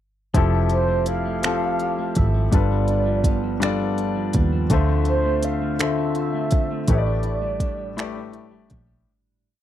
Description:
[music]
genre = slow six-eight R&B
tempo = 55 BPM (dotted quarters)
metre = 6/8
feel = straight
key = unclear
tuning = A4 = 440 Hz
[part]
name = electric guitar at the edge of break-up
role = second line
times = 0.3-9.6 s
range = G2 to G4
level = -28 LUFS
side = right 5 dB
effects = none
[part]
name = clear concert grand piano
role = accompaniment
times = 0.3-9.1 s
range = A2 to E5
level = -25 LUFS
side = left 7 dB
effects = none
[part]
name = smooth R&B drum kit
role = drums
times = 0.3-8.9 s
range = finger snaps, hi-hat, kick drum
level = -22 LUFS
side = right 1 dB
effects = none
[part]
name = vintage muted fingered electric bass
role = bass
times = 0.4-9.0 s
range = F1 to Eb2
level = -23 LUFS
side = equal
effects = none
[part]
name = mellow horn-like synth lead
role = melody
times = 0.7-8.4 s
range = C5 to F5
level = -26 LUFS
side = right 3 dB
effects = chorus, slapback echo
[sound]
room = digital ambience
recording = dry, close 1970s-style studio recording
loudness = -19 LUFS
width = side -11 dB against mid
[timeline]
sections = 0.3-9.1 verse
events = fade-out 6.9-9.1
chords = 0.3 Fmaj9; 2.5 G7; 4.7 Dm7; 6.9 A7sus4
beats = | 0.34 1.43 | 2.52 3.61 | 4.71 5.79 | 6.89 7.98

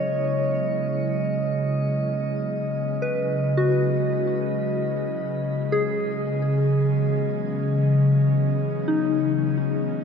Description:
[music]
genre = ambient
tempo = free time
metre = none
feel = none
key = C# minor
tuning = A4 = 439 Hz
[part]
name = ethereal airy pad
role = sustained chords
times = 0.0-10.0 s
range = C#3 to G#4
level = -23 LUFS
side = left 1 dB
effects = ensemble chorus, built-in reverb
[part]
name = soft synth bell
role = arpeggios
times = 0.0-10.0 s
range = D#4 to C#5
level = -27 LUFS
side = left 2 dB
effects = chorus, ping-pong delay, shimmer reverb
[part]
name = analog drone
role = drone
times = 0.1-10.0 s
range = C#3 to G#3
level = -32 LUFS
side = equal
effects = chorus
[part]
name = glass harmonica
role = texture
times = 0.0-10.0 s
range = D#5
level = -30 LUFS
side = right 2 dB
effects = shimmer reverb
[sound]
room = wet cathedral reverb, RT60 5.5 s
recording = none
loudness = -21 LUFS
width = side -6 dB against mid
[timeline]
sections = 0.0-10.0 A section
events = fade-in on synth drone 0.0-10.0; fade-out on glass harmonica 0.0-10.0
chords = 0.0 C#m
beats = free time

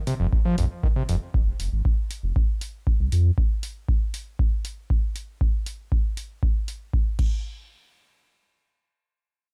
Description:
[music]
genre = acid house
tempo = 118 BPM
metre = 4/4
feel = straight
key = F minor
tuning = A4 = 440 Hz
[part]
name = overdriven acid bass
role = riff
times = 0.1-1.2 s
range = F2 to F3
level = -28 LUFS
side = equal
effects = distortion, sidechain pumping, dub echo
[part]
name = punchy analog drum machine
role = drums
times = 0.1-7.3 s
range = crash cymbal, hi-hat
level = -41 LUFS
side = equal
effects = none
[part]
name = warm sub bass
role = bass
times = 0.2-3.3 s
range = F1 to F2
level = -25 LUFS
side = equal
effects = sidechain pumping
[part]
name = electronic kick drum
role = drums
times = 0.3-7.3 s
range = none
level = -25 LUFS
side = equal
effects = none
[sound]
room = little or no reverb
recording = none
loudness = -25 LUFS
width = mono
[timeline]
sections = 0.0-7.4 A section; 7.4-9.5 B section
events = none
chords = 0.0 F5; 7.2 N.C.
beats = 0.33 0.83 | 1.34 1.85 2.36 2.87 | 3.38 3.88 4.39 4.90 | 5.41 5.92 6.43 6.93

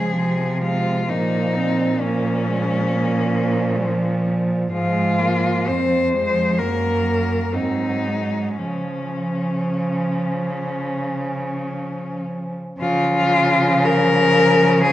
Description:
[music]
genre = classical, lyrical piece for cello ensemble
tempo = 54-67 BPM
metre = 4/4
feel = rubato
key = Db major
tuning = A4 = 440 Hz
[part]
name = rich cello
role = melody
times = 0.0-14.9 s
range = Db4 to C5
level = -22 LUFS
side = left 3 dB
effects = none
[part]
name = warm cello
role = second line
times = 0.0-14.9 s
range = F3 to C4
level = -25 LUFS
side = right 4 dB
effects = none
[part]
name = rich cello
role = accompaniment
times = 0.0-14.9 s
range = F3 to Gb3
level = -24 LUFS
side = equal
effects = none
[part]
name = rich cello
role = bass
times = 0.0-14.9 s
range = F2 to Db3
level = -24 LUFS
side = right 1 dB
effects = none
[sound]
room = wet recital hall reverb, RT60 1.7 s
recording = worn, warbling old tape, cassette tape, warbly pitch drift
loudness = -18 LUFS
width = side -14 dB against mid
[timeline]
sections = 0.0-12.8 A section; 12.8-14.9 B section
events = none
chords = 0.0 Db (rootless); 1.1 Bbm; 4.7 Fm/Ab; 6.6 Gb; 7.5 Ab7; 8.6 Db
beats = 0.15 | 1.09 2.02 2.92 3.84 | 4.74 5.68 6.59 7.54 | 8.58 9.67 10.72 11.76 | 12.79 13.84 14.79

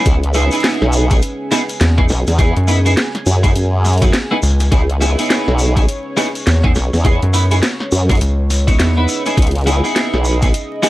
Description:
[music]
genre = glitch hop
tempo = 103 BPM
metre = 4/4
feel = swing 60% on 16ths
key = C# minor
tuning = A4 = 439 Hz
[part]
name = dark analog pad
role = sustained chords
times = 0.0-10.9 s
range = C#4 to G#5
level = -26 LUFS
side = equal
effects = chorus, sidechain pumping
[part]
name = twelve-string electric guitar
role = stabs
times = 0.0-10.9 s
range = B3 to C#5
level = -19 LUFS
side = right 1 dB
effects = analog chorus, sidechain pumping, tape echo
[part]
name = drum and bass drum kit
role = drums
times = 0.0-10.9 s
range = hi-hat, snare drum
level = -19 LUFS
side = equal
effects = none
[part]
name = shekere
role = percussion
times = 0.0-10.9 s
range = none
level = -26 LUFS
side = left 2 dB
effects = none
[part]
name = formant-sweep wobble bass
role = bass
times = 0.1-10.5 s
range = B1 to F#2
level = -14 LUFS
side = equal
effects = chorus, tube saturation
[part]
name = electronic kick drum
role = drums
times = 0.1-10.5 s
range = none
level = -14 LUFS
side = equal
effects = none
[part]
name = rubbery square bass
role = bass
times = 1.8-9.1 s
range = C#2 to F#2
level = -13 LUFS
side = equal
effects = none
[sound]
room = little or no reverb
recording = dry, gritty hardware recording, vinyl crackle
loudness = -12 LUFS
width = side -16 dB against mid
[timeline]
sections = 0.0-10.9 A section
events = none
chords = 0.0 C#m7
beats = | 0.06 0.64 1.22 1.80 | 2.39 2.97 3.55 4.13 | 4.72 5.30 5.88 6.46 | 7.05 7.63 8.21 8.80 | 9.38 9.96 10.54

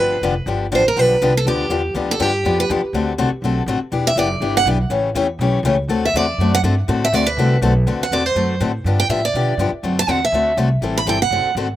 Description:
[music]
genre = acoustic string swing (jazz manouche)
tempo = 244 BPM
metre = 4/4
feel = swing 57% on 8ths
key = D mixolydian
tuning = A4 = 440 Hz
[part]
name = picked steel-string acoustic guitar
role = melody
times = 0.0-11.5 s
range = G4 to B5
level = -19 LUFS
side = right 2 dB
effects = slapback echo
[part]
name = picked steel-string acoustic guitar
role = accompaniment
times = 0.0-11.7 s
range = C#3 to A4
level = -20 LUFS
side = left 4 dB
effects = slapback echo
[part]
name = upright bass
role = bass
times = 0.0-11.8 s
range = E1 to B2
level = -21 LUFS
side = equal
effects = none
[sound]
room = little or no reverb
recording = recorded outdoors, with no room sound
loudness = -15 LUFS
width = side -13 dB against mid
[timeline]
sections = 0.0-7.9 A section; 7.9-11.8 A section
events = steel-string acoustic guitar solo 0.0-11.8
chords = 0.0 G7; 2.9 D7; 3.9 Em7; 4.9 A7; 5.9 D7; 8.8 G7; 9.8 D7; 10.8 Am7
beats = 0.23 0.47 0.72 | 0.97 1.21 1.46 1.71 | 1.95 2.20 2.45 2.69 | 2.94 3.19 3.43 3.68 | 3.92 4.17 4.42 4.66 | 4.91 5.16 5.40 5.65 | 5.89 6.14 6.39 6.63 | 6.88 7.13 7.37 7.62 | 7.87 8.11 8.36 8.60 | 8.85 9.10 9.34 9.59 | 9.84 10.08 10.33 10.57 | 10.82 11.07 11.31 11.56

